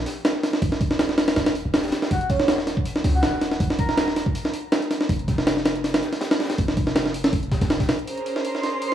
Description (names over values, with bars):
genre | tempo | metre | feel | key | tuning
drum and bass, jungle | 161 BPM | 4/4 | swing 54% on 16ths | unclear | A4 = 440 Hz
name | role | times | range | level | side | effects
warm 808-style bass | bass | 0.0-7.9 s | Eb1 to Db2 | -28 LUFS | equal | none
breakbeat sampler-style drum kit | drums | 0.1-8.9 s | hi-hat, kick drum, snare drum | -21 LUFS | equal | high-pass filter on hats, studio reverb, high-pass filter on snare, high-pass filter on kick
crunchy breakbeat drum kit | drums | 0.1-8.0 s | hi-hat, snare drum | -35 LUFS | left 4 dB | high-pass filter on hats, studio reverb, high-pass filter on snare, high-pass filter on room
airy dreamy lead | melody | 2.1-4.1 s | Db5 to Bb5 | -28 LUFS | right 2 dB | chorus, cassette tape, dub echo
rich studio string section | sustained chords | 8.1-8.9 s | Db4 to C5 | -26 LUFS | right 2 dB | none
twinkling granular texture | texture | 8.5-8.9 s | C6 | -28 LUFS | right 4 dB | built-in reverb
room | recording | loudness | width
light reverb, studio reverb | vinyl crackle, small room ambience | -20 LUFS | side -10 dB against mid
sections
0.0-8.1 A section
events
none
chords
0.0 N.C.; 0.6 Ebm; 4.3 N.C.; 8.1 Bbm9